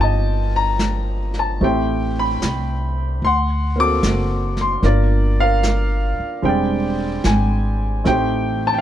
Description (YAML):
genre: jazz ballad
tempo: 74 BPM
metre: 4/4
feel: swing 69% on 8ths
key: G minor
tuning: A4 = 440 Hz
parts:
  - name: clear baby grand piano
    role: accompaniment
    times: 0.0-8.8 s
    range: G3 to D6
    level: -20 LUFS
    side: equal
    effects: none
  - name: upright bass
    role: bass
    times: 0.0-8.8 s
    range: E1 to D2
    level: -20 LUFS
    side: equal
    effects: none
  - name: jazz brush drum kit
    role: drums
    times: 0.8-8.8 s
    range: brushed snare drum, hi-hat, snare drum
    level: -26 LUFS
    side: right 2 dB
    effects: none
room: light reverb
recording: close, detailed microphones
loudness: -16 LUFS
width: side -11 dB against mid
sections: 0.0-8.8 A section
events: none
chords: 0.0 Cm7; 1.6 Am9; 3.2 D7b13; 4.8 Gm7; 6.4 E7alt; 8.1 Am7b5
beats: 0.80 | 1.61 2.42 3.23 4.03 | 4.83 5.64 6.44 7.25 | 8.06